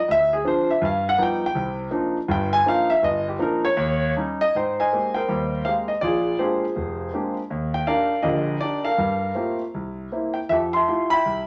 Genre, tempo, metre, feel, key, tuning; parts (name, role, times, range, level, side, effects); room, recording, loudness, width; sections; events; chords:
solo jazz; 162 BPM; 4/4; swing 64% on 8ths, rubato; C minor; A4 = 437 Hz
warm concert grand piano; solo; 0.0-11.5 s; F1 to C6; -23 LUFS; equal
wet studio reverb, RT60 0.6 s; -23 LUFS; mono
0.0-4.5 A section; 4.5-11.5 B section
grand piano solo 0.0-4.5
0.1 Dm9b5; 0.8 Gaug7; 1.6 Cm11; 3.8 Eb7; 4.5 Abmaj9; 6.0 Bb13; 7.5 Ebmaj7; 9.0 Gm11; 9.7 C7; 10.5 Fmaj9